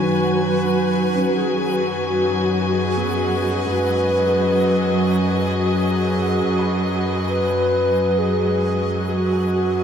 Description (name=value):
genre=ambient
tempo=66 BPM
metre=4/4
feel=straight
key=unclear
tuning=A4 = 440 Hz
part: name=mellow hollow alto flute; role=melody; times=0.0-9.8 s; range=F#4 to B4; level=-23 LUFS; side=equal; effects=analog delay
part: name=dark chamber string section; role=sustained chords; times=0.0-9.8 s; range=F#3 to G#5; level=-21 LUFS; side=equal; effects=none
part: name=felt-muted upright piano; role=arpeggios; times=0.0-9.8 s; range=D#3 to B5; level=-31 LUFS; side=right 1 dB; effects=analog delay
part: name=rich studio cello section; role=bass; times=0.0-9.8 s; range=F#2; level=-25 LUFS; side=equal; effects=none
part: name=overtone-sweeping drone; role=drone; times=0.0-9.8 s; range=F#3 to F#4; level=-30 LUFS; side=equal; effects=chorus, built-in reverb
part: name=backwards swelling texture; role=texture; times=0.0-9.8 s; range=F#5 to F#6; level=-37 LUFS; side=left 1 dB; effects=built-in reverb
room=wet plate reverb, RT60 3.4 s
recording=echo-heavy mix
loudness=-17 LUFS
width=side -8 dB against mid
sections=0.0-9.8 A section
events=fade-out on felt piano 0.0-9.8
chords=0.0 G#m7/F#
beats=0.90 1.80 2.71 | 3.62 4.53 5.44 6.35 | 7.26 8.17 9.08